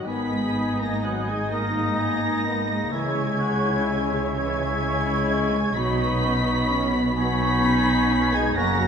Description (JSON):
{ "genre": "cinematic", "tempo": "42 BPM (dotted quarters)", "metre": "6/8", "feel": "rubato", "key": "G# minor", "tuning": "A4 = 440 Hz", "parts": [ { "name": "muted symphonic violin section", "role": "melody", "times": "0.0-8.9 s", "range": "F#6 to B6", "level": "-30 LUFS", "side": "equal", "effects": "none" }, { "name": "mellow cor anglais", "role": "second line", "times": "0.0-8.9 s", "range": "A#4 to G#5", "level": "-33 LUFS", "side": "right 1 dB", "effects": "none" }, { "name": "muted studio violin section", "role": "second line", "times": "0.0-8.9 s", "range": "F#5 to B5", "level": "-32 LUFS", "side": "left 3 dB", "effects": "none" }, { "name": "warm French horn section", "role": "sustained chords", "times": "0.0-8.9 s", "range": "F#3 to B3", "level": "-27 LUFS", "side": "left 3 dB", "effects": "none" }, { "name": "muted studio cello section", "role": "bass", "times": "0.0-8.9 s", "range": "F#2 to C#3", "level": "-29 LUFS", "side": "right 1 dB", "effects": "none" }, { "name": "bright clarinet", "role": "second line", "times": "0.1-8.9 s", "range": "C#4 to E4", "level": "-32 LUFS", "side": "left 1 dB", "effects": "none" }, { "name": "large flute ensemble", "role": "second line", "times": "0.1-8.9 s", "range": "C#6 to D#6", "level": "-32 LUFS", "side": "right 2 dB", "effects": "none" }, { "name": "muted symphonic viola section", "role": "accompaniment", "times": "0.1-8.9 s", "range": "C#3 to D#5", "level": "-30 LUFS", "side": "right 2 dB", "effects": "none" }, { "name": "muted studio double bass section", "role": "bass", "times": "0.1-8.9 s", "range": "F#1 to C#2", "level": "-30 LUFS", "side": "right 3 dB", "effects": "none" } ], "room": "wet concert hall reverb, RT60 2.2 s", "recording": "none", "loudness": "-20 LUFS", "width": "side -7 dB against mid", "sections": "0.1-8.9 A section", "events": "none", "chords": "0.1 G#m; 2.9 C#m; 5.8 Badd9", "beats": "| 0.07 1.52 | 2.94 4.35 | 5.76 7.17 | 8.56" }